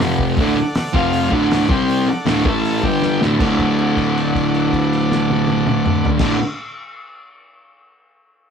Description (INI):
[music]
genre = garage rock duo or trio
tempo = 159 BPM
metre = 4/4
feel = straight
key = D mixolydian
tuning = A4 = 441 Hz
[part]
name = fuzz guitar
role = riff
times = 0.0-6.4 s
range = D2 to C4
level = -16 LUFS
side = equal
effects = distortion
[part]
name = cloth-damped thuddy drum kit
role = drums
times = 0.0-6.3 s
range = crash cymbal, hi-hat, kick drum, snare drum, toms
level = -23 LUFS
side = equal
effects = none
[part]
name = combo organ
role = sustained chords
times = 0.4-6.4 s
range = F4 to A5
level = -24 LUFS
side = equal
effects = none
[sound]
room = moderate studio reverb, RT60 0.6 s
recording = rough rehearsal-room recording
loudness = -15 LUFS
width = side -7 dB against mid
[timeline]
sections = 0.0-3.4 A section; 3.4-6.4 B section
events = drum fill 3.0-3.4; held note 3.4-6.2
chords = 0.0 F5; 0.4 D; 1.0 F5; 1.3 D; 1.7 C5; 2.1 D; 2.5 A5; 2.8 G5; 3.2 D5; 3.4 D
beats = 0.01 | 0.39 0.76 1.14 1.52 | 1.90 2.28 2.65 3.03 | 3.41 3.79 4.16 4.54 | 4.92 5.29 5.67 6.05